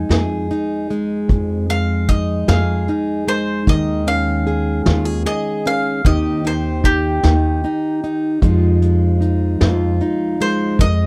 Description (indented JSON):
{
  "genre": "acoustic folk duo or small band",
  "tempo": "50 BPM (dotted quarters)",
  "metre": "6/8",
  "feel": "straight",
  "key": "F minor",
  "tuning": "A4 = 440 Hz",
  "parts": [
    { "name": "bowl-back mandolin", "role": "melody", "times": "0.0-11.1 s", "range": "G4 to Ab5", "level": "-25 LUFS", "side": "equal", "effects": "none" },
    { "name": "fingerpicked plugged-in steel-string acoustic guitar", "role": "accompaniment", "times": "0.0-11.1 s", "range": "F2 to Ab4", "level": "-22 LUFS", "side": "equal", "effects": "none" },
    { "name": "upright bass", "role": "bass", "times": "0.0-11.1 s", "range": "Eb2 to F2", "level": "-20 LUFS", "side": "equal", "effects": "none" },
    { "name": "vintage brush drum kit", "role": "drums", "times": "0.1-11.0 s", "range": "hi-hat, kick drum, snare drum", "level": "-20 LUFS", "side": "equal", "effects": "none" }
  ],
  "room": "little or no reverb",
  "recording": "faint mains hum",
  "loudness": "-18 LUFS",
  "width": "mono",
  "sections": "0.0-11.1 A section",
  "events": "mandolin solo 0.0-11.1",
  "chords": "0.0 Fm7; 3.7 Eb7sus4; 6.0 Cm/Eb; 8.4 Fm7",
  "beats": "0.11 | 1.30 2.49 | 3.67 4.86 | 6.05 7.24 | 8.42 9.61 | 10.79"
}